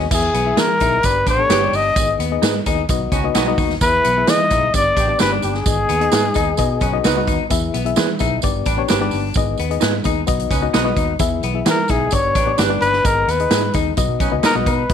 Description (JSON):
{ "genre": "uptempo 1960s-style soul", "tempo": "130 BPM", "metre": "4/4", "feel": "straight", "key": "B major", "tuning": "A4 = 440 Hz", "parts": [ { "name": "reed electric piano", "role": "accompaniment", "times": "0.0-14.9 s", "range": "G2 to E5", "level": "-23 LUFS", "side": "left 11 dB", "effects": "fast tremolo" }, { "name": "electric guitar through a small old amp", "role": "riff", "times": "0.0-14.8 s", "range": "B3 to D#4", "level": "-27 LUFS", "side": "left 13 dB", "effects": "none" }, { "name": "vintage muted fingered electric bass", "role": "bass", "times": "0.0-14.9 s", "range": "G1 to E3", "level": "-24 LUFS", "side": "right 2 dB", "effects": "none" }, { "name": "mellow trumpet", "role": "melody", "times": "0.1-7.2, 11.7-14.9 s", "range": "G#4 to D#5", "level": "-17 LUFS", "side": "left 1 dB", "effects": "none" }, { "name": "swinging big-band drum kit", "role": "drums", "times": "0.1-14.9 s", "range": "crash cymbal, hi-hat, kick drum, snare drum", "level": "-20 LUFS", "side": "right 1 dB", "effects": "none" }, { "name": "tambourine", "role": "percussion", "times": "0.1-14.8 s", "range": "none", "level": "-30 LUFS", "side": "right 16 dB", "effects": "none" }, { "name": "electric guitar through a small old amp", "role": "stabs", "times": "0.6-14.6 s", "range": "B3 to B4", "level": "-25 LUFS", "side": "right 13 dB", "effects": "none" }, { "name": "mellow horn section", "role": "second line", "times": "1.3-14.8 s", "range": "D3 to B4", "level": "-27 LUFS", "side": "right 12 dB", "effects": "none" } ], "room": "light reverb, studio reverb", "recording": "1960s-style stereo with parts hard left and right", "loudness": "-15 LUFS", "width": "side -8 dB against mid", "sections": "0.1-14.9 A section", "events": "none", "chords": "0.1 E; 1.0 G; 2.0 G#m; 2.9 B; 3.8 E; 4.7 G; 5.7 G#m; 6.6 B; 7.5 E; 8.4 G; 9.4 G#m; 10.3 B; 11.2 E; 12.1 G; 13.1 G#m; 14.0 B" }